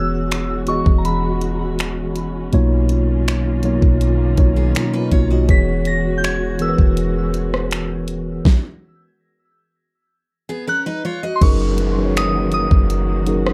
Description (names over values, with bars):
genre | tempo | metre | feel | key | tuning
contemporary R&B | 81 BPM | 4/4 | straight | unclear | A4 = 442 Hz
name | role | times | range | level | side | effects
soft synth bell | melody | 0.0-13.5 s | A#5 to B6 | -27 LUFS | equal | chorus, phaser, tape echo
mellow tine electric piano | accompaniment | 0.0-13.5 s | B2 to D#5 | -23 LUFS | equal | none
warm studio string section | sustained chords | 0.0-13.5 s | D#3 to F#4 | -30 LUFS | equal | none
clean 808-style bass | bass | 0.0-13.5 s | D#1 to B1 | -23 LUFS | equal | none
smooth R&B drum kit | drums | 0.3-13.5 s | crash cymbal, finger snaps, hi-hat, kick drum, rim click, snare drum | -18 LUFS | equal | none
picked steel-string acoustic guitar | arpeggios | 4.6-5.7, 10.5-11.6 s | B3 to D#5 | -29 LUFS | equal | none
downlifter | sound effects | 11.4-13.5 s | none | -34 LUFS | equal | none
room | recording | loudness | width
light reverb | dark, warm production | -18 LUFS | mono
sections
0.0-11.4 A section; 11.4-13.5 B section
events
stop 8.5-11.4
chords
0.0 E69; 2.5 Bmaj9#11; 5.5 E69; 8.5 N.C.; 11.4 F#6